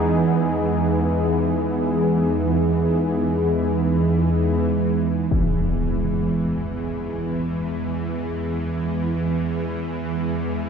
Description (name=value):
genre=dark ambient drone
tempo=free time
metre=none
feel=none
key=E major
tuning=A4 = 442 Hz
part: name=sweeping resonant pad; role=sustained chords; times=0.0-10.7 s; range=E2 to G#4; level=-23 LUFS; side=left 1 dB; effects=chorus
part: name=bowed-like drone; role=drone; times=0.0-10.7 s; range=E2 to E3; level=-22 LUFS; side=right 2 dB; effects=built-in reverb
part: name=impact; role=percussion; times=5.3-5.6 s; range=none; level=-28 LUFS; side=left 1 dB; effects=low-pass filter on sfx
room=wet cathedral reverb, RT60 7.1 s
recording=dark, warm production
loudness=-20 LUFS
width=side -6 dB against mid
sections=0.0-5.3 A section; 5.3-10.7 B section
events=none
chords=0.0 G#m/E; 5.3 E